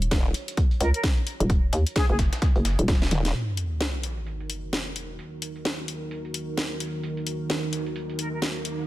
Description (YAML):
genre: bass house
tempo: 130 BPM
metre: 4/4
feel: swing 60% on 16ths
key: Eb minor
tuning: A4 = 440 Hz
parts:
  - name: dark analog pad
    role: sustained chords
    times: 0.0-8.9 s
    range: Eb3 to Db5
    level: -34 LUFS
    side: right 2 dB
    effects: chorus, sidechain pumping
  - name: hollow knocking FM bass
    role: bass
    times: 0.0-3.1 s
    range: Eb1 to Eb2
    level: -23 LUFS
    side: equal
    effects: sidechain pumping
  - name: house drum kit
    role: drums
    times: 0.0-8.8 s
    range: hi-hat, snare drum, toms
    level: -30 LUFS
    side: left 1 dB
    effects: none
  - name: formant-sweep wobble bass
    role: bass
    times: 0.1-0.3, 3.1-3.3 s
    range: Eb1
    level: -25 LUFS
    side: equal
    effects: chorus, tube saturation, sidechain pumping
  - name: dusty soul sampler-style drum kit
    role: drums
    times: 0.1-8.8 s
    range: hi-hat, snare drum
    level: -40 LUFS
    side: right 1 dB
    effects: sidechain pumping on hats, high-pass filter on hats, low-pass filter on hats, high-pass filter on snare, low-pass filter on snare, high-pass filter on room, low-pass filter on room
  - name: electronic kick drum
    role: drums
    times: 0.1-3.0 s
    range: none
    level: -22 LUFS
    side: equal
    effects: none
  - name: silver concert flute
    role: melody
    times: 0.8-2.2, 8.2-8.4 s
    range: Ab4 to Bb4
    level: -34 LUFS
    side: equal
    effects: ping-pong delay
  - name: sub drop and riser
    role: sound effects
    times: 3.3-8.9 s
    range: none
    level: -33 LUFS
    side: equal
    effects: none
room: little or no reverb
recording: none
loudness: -24 LUFS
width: side -16 dB against mid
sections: 0.0-3.3 A section; 3.3-8.9 B section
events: drop 0.0-3.3; drum fill 2.9-3.3; impact 3.3-5.2; riser 7.8-8.9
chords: 0.0 Ebm